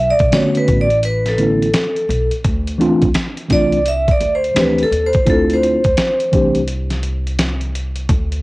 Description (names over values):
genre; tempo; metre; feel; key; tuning
hip hop, jazz-hop; 85 BPM; 4/4; swing 63% on 16ths; unclear; A4 = 440 Hz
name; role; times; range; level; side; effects
vibraphone with hard mallets; melody; 0.0-6.5 s; A4 to E5; -16 LUFS; equal; cassette tape
upright bass; bass; 0.0-8.4 s; A1 to D#2; -21 LUFS; equal; none
dusty soul sampler-style drum kit; drums; 0.2-8.4 s; hi-hat, kick drum, snare drum; -19 LUFS; equal; overdrive, cassette tape
mellow tine electric piano; accompaniment; 0.3-6.6 s; D3 to G4; -16 LUFS; equal; medium stereo tremolo
room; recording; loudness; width
light reverb; home recording on cassette; -13 LUFS; side -21 dB against mid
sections
0.0-8.4 A section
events
vibraphone solo 0.0-8.4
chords
0.0 Bm9; 2.4 Dm9